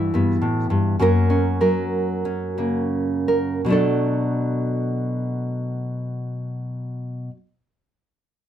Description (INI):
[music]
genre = folk, solo fingerstyle acoustic guitar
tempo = 80-109 BPM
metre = 4/4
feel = straight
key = B minor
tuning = A4 = 440 Hz
[part]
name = nylon-string guitar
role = solo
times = 0.0-7.4 s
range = F#2 to A#4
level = -20 LUFS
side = equal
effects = none
[sound]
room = little or no reverb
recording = close, detailed microphones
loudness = -20 LUFS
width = side -10 dB against mid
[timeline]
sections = 0.0-3.6 A section; 3.6-8.5 B section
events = slowing down 0.0-3.6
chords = 0.0 Emadd9/G; 1.0 F#; 3.6 Bm7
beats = 0.41 | 0.99 1.60 2.24 2.92 | 3.65 4.40 5.15 5.89 | 6.63 7.36